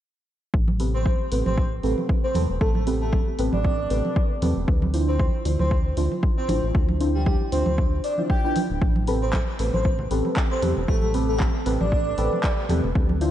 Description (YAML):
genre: deep house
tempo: 116 BPM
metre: 4/4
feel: swing 55% on 16ths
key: A minor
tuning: A4 = 440 Hz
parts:
  - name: round analog bass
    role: bass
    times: 0.5-13.3 s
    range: D1 to E2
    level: -25 LUFS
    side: equal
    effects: sidechain pumping
  - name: electronic kick drum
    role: drums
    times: 0.5-13.1 s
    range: none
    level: -23 LUFS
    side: equal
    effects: none
  - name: congas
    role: percussion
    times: 0.7-13.2 s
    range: none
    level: -32 LUFS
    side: right 2 dB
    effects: none
  - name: deep mellow chord stab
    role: stabs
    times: 0.8-13.3 s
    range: C4 to C5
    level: -27 LUFS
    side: right 1 dB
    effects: chorus, phaser, sidechain pumping, diffuse ambient delay
  - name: punchy analog drum machine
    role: drums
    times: 0.8-13.3 s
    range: handclaps, hi-hat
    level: -35 LUFS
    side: equal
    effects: none
  - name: airy dreamy lead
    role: melody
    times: 0.9-12.5 s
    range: G4 to G5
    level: -29 LUFS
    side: equal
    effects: chorus, diffuse ambient delay
room: moderate lush hall reverb, RT60 1.9 s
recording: dreamy mix soaked in reverb, cassette tape, nothing above 10.5 kHz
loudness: -20 LUFS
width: side -12 dB against mid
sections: 0.5-13.3 A section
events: none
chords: 0.5 Am9; 4.7 Dm9; 8.8 Am9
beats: | 0.54 1.06 1.57 2.09 | 2.61 3.13 3.64 4.16 | 4.68 5.20 5.71 6.23 | 6.75 7.26 7.78 8.30 | 8.82 9.33 9.85 10.37 | 10.88 11.40 11.92 12.44 | 12.95